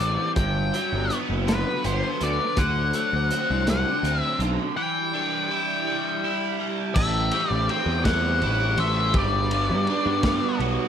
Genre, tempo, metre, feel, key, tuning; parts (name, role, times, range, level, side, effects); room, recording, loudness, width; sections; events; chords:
psychedelic rock; 55 BPM (dotted quarters); 6/8; straight; A dorian; A4 = 440 Hz
octave-fuzz lead guitar; melody; 0.0-10.6 s; B4 to G5; -26 LUFS; left 3 dB; distortion, slapback echo
soft string machine; sustained chords; 0.0-10.9 s; F#3 to B5; -35 LUFS; right 5 dB; ensemble chorus
overdriven electric guitar; riff; 0.0-10.9 s; G2 to C5; -27 LUFS; right 1 dB; flanger
fuzz picked electric bass; bass; 0.0-10.8 s; F#1 to G2; -26 LUFS; equal; overdrive
crunchy breakbeat drum kit; drums; 0.0-10.8 s; crash cymbal, hi-hat, kick drum, ride cymbal, snare drum; -28 LUFS; equal
small room ambience; -21 LUFS; side -8 dB against mid
0.0-7.0 A section; 7.0-10.9 B section
break 4.8-7.0
0.4 Gmaj7; 2.6 D7; 4.8 Em7; 7.0 Am7; 9.1 Gmaj7